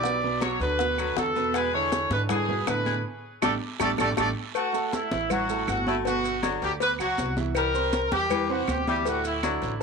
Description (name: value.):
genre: latin, salsa.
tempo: 160 BPM.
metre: 4/4.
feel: straight.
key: unclear.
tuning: A4 = 440 Hz.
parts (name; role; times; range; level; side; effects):
bright horn section; melody; 0.0-9.8 s; E4 to D5; -27 LUFS; equal; tape echo.
clear baritone saxophone; second line; 0.0-9.7 s; E3 to A3; -32 LUFS; left 11 dB; none.
clear grand piano; accompaniment; 0.0-9.8 s; A2 to C6; -31 LUFS; right 13 dB; none.
upright bass; bass; 0.0-9.8 s; G1 to A2; -33 LUFS; equal; none.
bongos and cowbell; percussion; 0.0-9.8 s; none; -34 LUFS; left 14 dB; none.
congas; percussion; 0.0-9.8 s; none; -33 LUFS; equal; none.
guiro; percussion; 0.0-9.8 s; none; -44 LUFS; right 16 dB; none.
maracas; percussion; 0.1-9.8 s; none; -42 LUFS; right 19 dB; none.
claves; percussion; 0.4-9.6 s; none; -36 LUFS; right 17 dB; none.
room: moderate spring reverb, RT60 1.2 s, studio ambience.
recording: 1960s-style stereo with parts hard left and right.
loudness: -23 LUFS.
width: side -5 dB against mid.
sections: 0.0-4.6 A section; 4.6-9.8 B section.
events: band accent 3.1-4.6; drum fill 3.4-4.6.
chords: 0.0 Gmaj7/B (rootless); 1.5 E7; 3.1 A7sus4; 4.6 F#m7; 6.1 Gmaj7; 7.6 C7; 9.1 Dadd9.